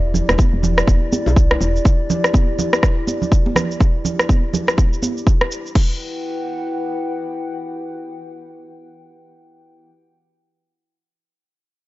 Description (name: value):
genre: afro house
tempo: 123 BPM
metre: 4/4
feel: swing 60% on 16ths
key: E minor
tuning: A4 = 440 Hz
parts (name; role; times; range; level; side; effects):
- dark analog pad; sustained chords; 0.0-9.9 s; E4 to G5; -26 LUFS; left 1 dB; lush chorus, sidechain pumping
- woody FM bass; bass; 0.0-1.8 s; E1 to B1; -19 LUFS; equal; sidechain pumping
- congas; percussion; 0.1-5.5 s; none; -23 LUFS; right 4 dB; none
- house drum kit; drums; 0.2-5.9 s; crash cymbal, rim click, shaker; -21 LUFS; equal; none
- bongos; percussion; 0.3-1.7 s; none; -26 LUFS; left 4 dB; none
- electronic kick drum; drums; 0.4-5.9 s; none; -15 LUFS; equal; none
room: digital ambience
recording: dry, gritty hardware recording, nothing above 7.6 kHz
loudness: -16 LUFS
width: side -18 dB against mid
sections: 0.0-5.8 A section; 5.8-9.7 B section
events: none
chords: 0.0 Em7; 5.8 Em